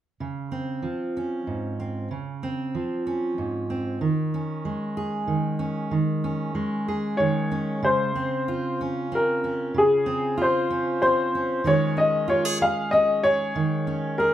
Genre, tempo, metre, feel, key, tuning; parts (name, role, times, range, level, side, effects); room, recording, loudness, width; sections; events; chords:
folk; 94 BPM; 3/4; straight; Db major; A4 = 440 Hz
fingerpicked steel-string acoustic guitar; accompaniment; 0.2-14.3 s; Ab2 to Ab4; -26 LUFS; right 2 dB
clear upright piano; melody; 7.2-14.3 s; Ab4 to F5; -22 LUFS; left 1 dB
moderate large studio reverb, RT60 0.8 s; minimal, uncompressed stereo recording; -22 LUFS; side -12 dB against mid
0.2-7.8 A section; 7.8-14.3 B section
0.2 Dbmaj7; 4.0 Absus4/Eb; 7.8 Dbmaj7; 11.6 Absus4/Eb